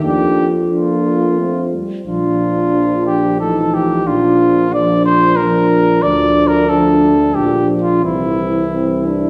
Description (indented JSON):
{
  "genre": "classical, brass quintet",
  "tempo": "90 BPM",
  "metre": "3/4",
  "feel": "straight",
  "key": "Bb major",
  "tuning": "A4 = 439 Hz",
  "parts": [
    { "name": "clear cornet", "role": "melody", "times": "0.0-9.3 s", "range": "E4 to D5", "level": "-19 LUFS", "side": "equal", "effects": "none" },
    { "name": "mellow French horn", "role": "accompaniment", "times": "0.0-9.3 s", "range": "C4 to Eb4", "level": "-20 LUFS", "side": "equal", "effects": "none" },
    { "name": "mellow trombone", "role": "accompaniment", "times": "0.0-9.3 s", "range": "E3 to Bb3", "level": "-24 LUFS", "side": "equal", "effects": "none" },
    { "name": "clear bass trombone", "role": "bass", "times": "0.0-9.3 s", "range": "A1 to F2", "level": "-20 LUFS", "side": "equal", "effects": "none" }
  ],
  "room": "wet recital hall reverb, RT60 1.3 s",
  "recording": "heard from further back in the room",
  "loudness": "-14 LUFS",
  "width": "mono",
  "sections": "0.0-9.3 A section",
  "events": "none",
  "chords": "0.0 Bb/F; 1.4 F; 2.1 Bb; 3.4 F7/A; 4.1 Bb; 6.0 Dm; 7.4 Gm7/Bb; 8.0 C",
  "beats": "| 0.04 0.72 1.39 | 2.06 2.73 3.40 | 4.06 4.72 5.37 | 6.03 6.69 7.36 | 8.03 8.72"
}